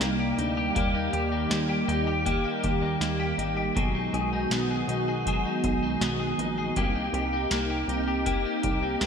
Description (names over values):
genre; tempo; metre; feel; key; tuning
dream pop; 80 BPM; 4/4; straight; Eb major; A4 = 442 Hz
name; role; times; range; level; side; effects
hollow soft pad; sustained chords; 0.0-9.1 s; C3 to G4; -29 LUFS; right 2 dB; chorus
clean electric guitar; arpeggios; 0.0-9.1 s; F#3 to G#4; -28 LUFS; left 3 dB; ensemble chorus, ping-pong delay
plucky analog bass; bass; 0.0-9.1 s; Ab1 to Eb2; -32 LUFS; right 1 dB; none
booming analog drum machine; drums; 0.0-9.1 s; hi-hat, kick drum, snare drum; -31 LUFS; equal; gated reverb
room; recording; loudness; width
moderate lush hall reverb, RT60 1.9 s; bright 1980s-style digital production; -24 LUFS; side -6 dB against mid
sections
0.0-9.1 A section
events
none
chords
0.0 Cm7; 0.8 Eb; 3.8 B6; 6.8 Cm7